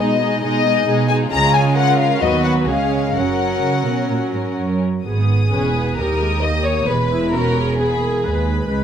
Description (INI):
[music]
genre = quick classical-period movement for string orchestra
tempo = 130 BPM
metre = 4/4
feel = uneven beats, rubato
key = F# major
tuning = A4 = 440 Hz
[part]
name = warm studio violin section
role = melody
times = 0.0-8.8 s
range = D#5 to D#6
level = -21 LUFS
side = left 8 dB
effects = none
[part]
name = rich studio violin section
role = second line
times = 0.0-8.4 s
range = C#4 to D#5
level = -23 LUFS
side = left 2 dB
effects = none
[part]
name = rich studio viola section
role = accompaniment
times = 0.0-8.8 s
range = F#3 to B4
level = -22 LUFS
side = right 2 dB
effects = none
[part]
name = dark studio cello section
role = bass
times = 0.0-8.8 s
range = C#2 to D#3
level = -21 LUFS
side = right 3 dB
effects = none
[part]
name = dark studio double bass section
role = bass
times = 1.3-8.8 s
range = E1 to D#2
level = -22 LUFS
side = right 3 dB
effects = none
[sound]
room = light reverb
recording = close, detailed microphones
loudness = -15 LUFS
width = side -8 dB against mid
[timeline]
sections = 0.0-5.1 A section; 5.1-8.8 B section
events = none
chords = 0.0 G#m/B; 1.3 C#; 2.2 B/D#; 2.7 C#; 3.2 F#; 5.1 G#m; 6.0 D#; 6.9 E